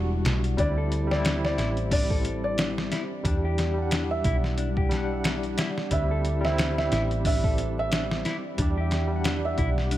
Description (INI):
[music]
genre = trip hop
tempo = 90 BPM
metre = 4/4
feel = swing 57% on 16ths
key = E minor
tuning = A4 = 438 Hz
[part]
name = barky tine electric piano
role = accompaniment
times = 0.0-10.0 s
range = G3 to F#5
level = -32 LUFS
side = equal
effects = medium stereo tremolo, vintage 12-bit sampler grit, tape echo
[part]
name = dark analog pad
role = sustained chords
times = 0.0-10.0 s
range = G3 to F#5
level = -35 LUFS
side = left 2 dB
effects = chorus, vintage 12-bit sampler grit
[part]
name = hollow-body short-scale fingered electric bass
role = bass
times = 0.0-10.0 s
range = E1 to E2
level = -28 LUFS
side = equal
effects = none
[part]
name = trip hop sampler-style drum kit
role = drums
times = 0.3-10.0 s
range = hi-hat, kick drum, snare drum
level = -28 LUFS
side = equal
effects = none
[part]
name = felt-muted upright piano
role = melody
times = 0.6-9.7 s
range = D5 to E5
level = -31 LUFS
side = right 2 dB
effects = dub echo
[part]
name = mellow electric guitar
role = arpeggios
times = 0.6-10.0 s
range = D4 to A4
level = -35 LUFS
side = left 5 dB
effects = spring reverb, tape echo
[sound]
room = light reverb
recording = none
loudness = -23 LUFS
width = side -14 dB against mid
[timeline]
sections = 0.0-10.0 A section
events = none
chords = 0.0 Em9; 0.6 D9sus4; 3.2 Em9; 5.9 D9sus4; 8.6 Em9